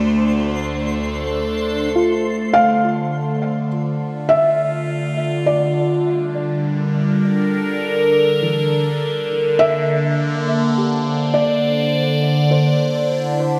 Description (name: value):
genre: ambient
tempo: 51 BPM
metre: 3/4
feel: straight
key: D minor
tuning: A4 = 440 Hz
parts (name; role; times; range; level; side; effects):
- felt-muted upright piano; melody; 0.0-13.6 s; A4 to F5; -22 LUFS; equal; tape echo
- evolving wavetable pad; sustained chords; 0.0-13.6 s; D3 to D5; -20 LUFS; equal; phaser, built-in reverb
- soft round pluck; arpeggios; 0.0-13.6 s; E3 to G4; -27 LUFS; equal; chorus, tape echo
- warm chamber cello section; bass; 0.0-1.9 s; D2; -24 LUFS; equal; none
- bowed-like drone; drone; 0.0-13.6 s; D3 to D4; -34 LUFS; equal; built-in reverb, phaser
- twinkling granular texture; texture; 0.0-2.0 s; C6; -35 LUFS; equal; built-in reverb
room: wet lush hall reverb, RT60 2.7 s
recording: none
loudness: -18 LUFS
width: mono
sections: 0.0-1.9 A section; 1.9-13.6 B section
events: fade-in on synth drone 1.9-13.6; fade-out on synth pluck 1.9-13.6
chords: 0.0 Am/D; 1.9 Dm7; 5.5 Gm7/D; 9.0 Bb/D; 12.5 Am7/D